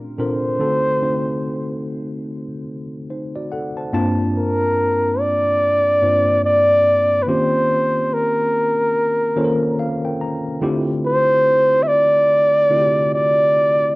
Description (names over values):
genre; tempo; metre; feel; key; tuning
R&B; 72 BPM; 4/4; swing 61% on 16ths; G dorian from 3.9 s; A4 = 439 Hz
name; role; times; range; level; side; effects
tine electric piano; accompaniment; 0.0-13.9 s; G2 to Bb5; -22 LUFS; equal; medium stereo tremolo, cassette tape
breathy flugelhorn; melody; 0.2-14.0 s; Bb4 to E5; -15 LUFS; equal; cassette tape
room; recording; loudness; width
moderate studio reverb, RT60 0.5 s; home recording on cassette; -15 LUFS; side -23 dB against mid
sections
0.0-3.9 A section; 3.9-14.0 B section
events
tine electric piano fill 8.9-10.6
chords
0.0 Bb69; 0.6 D7b9; 3.9 Gm9; 7.3 Eb13; 10.6 Dm7